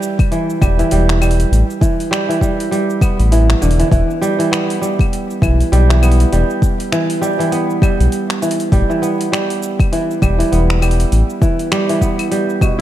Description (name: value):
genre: organic downtempo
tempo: 100 BPM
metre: 4/4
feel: swing 58% on 16ths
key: unclear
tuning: A4 = 440 Hz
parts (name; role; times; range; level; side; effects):
- kora; arpeggios; 0.0-12.8 s; B2 to B3; -16 LUFS; right 1 dB; ping-pong delay, shimmer reverb
- afro-pop drum kit; drums; 0.0-12.8 s; claves, finger snaps, hi-hat, shaker; -24 LUFS; left 1 dB; none
- electronic kick drum; drums; 0.2-12.8 s; none; -15 LUFS; equal; none
- round analog bass; bass; 0.6-11.2 s; E1 to B1; -12 LUFS; equal; sidechain pumping
room: moderate recital hall reverb, RT60 1.7 s, digital ambience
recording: dark, warm production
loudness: -12 LUFS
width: side -13 dB against mid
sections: 0.0-12.8 A section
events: none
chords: 0.0 A5; 3.9 Em; 8.7 A7(no3) (rootless)